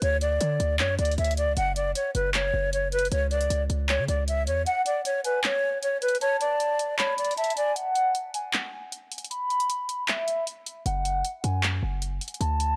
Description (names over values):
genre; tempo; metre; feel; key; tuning
hip hop, trap; 155 BPM; 4/4; half-time; F# minor; A4 = 442 Hz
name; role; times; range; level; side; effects
breathy hollow jazz flute; melody; 0.0-7.7 s; B4 to F#5; -28 LUFS; equal; none
hard-hitting 808-style bass; bass; 0.0-4.7, 10.9-12.8 s; F#1 to D3; -30 LUFS; equal; none
trap drum kit; drums; 0.0-12.7 s; handclaps, hi-hat; -32 LUFS; equal; overdrive
hollow clarinet-like synth lead; second line; 4.7-12.8 s; E5 to B5; -31 LUFS; equal; chorus, analog delay
room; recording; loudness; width
little or no reverb; dry, gritty hardware recording; -26 LUFS; mono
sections
0.0-12.8 A section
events
kick muted 4.7-10.9; break 7.8-10.9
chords
0.0 N.C.; 1.6 F#5; 3.1 N.C.